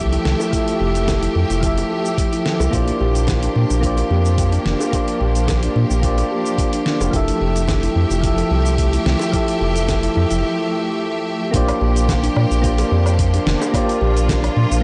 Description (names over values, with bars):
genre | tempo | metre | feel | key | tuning
sunset chillout | 109 BPM | 4/4 | straight | unclear | A4 = 440 Hz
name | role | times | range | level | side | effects
soft electric-piano-like synth keys | accompaniment | 0.0-14.8 s | F3 to E5 | -25 LUFS | equal | chorus, tremolo, delay
clear studio string section | sustained chords | 0.0-14.8 s | F3 to E5 | -27 LUFS | equal | none
round analog bass | bass | 0.0-14.8 s | F1 to Bb2 | -20 LUFS | equal | none
kalimba | arpeggios | 0.1-14.8 s | D4 to A4 | -27 LUFS | equal | delay
dusty soul sampler-style drum kit | drums | 0.1-14.8 s | cabasa, hi-hat, snare drum, woodblock | -28 LUFS | equal | none
bongos | percussion | 0.4-14.4 s | none | -32 LUFS | equal | none
electronic kick drum | drums | 0.5-14.4 s | none | -24 LUFS | equal | none
room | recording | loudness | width
moderate lush hall reverb, RT60 1.6 s | blown-out, overdriven recording, overdrive, nothing above 10.3 kHz | -18 LUFS | mono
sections
0.0-11.5 A section; 11.5-14.8 B section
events
break 10.4-11.5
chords
0.0 Fmaj9; 2.7 Bb6; 7.1 Fmaj9; 11.5 Bb6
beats
| 0.53 1.08 1.63 2.18 | 2.73 3.28 3.83 4.38 | 4.93 5.49 6.04 6.59 | 7.14 7.69 8.24 8.79 | 9.34 9.89 10.44 10.99 | 11.54 12.09 12.64 13.19 | 13.74 14.29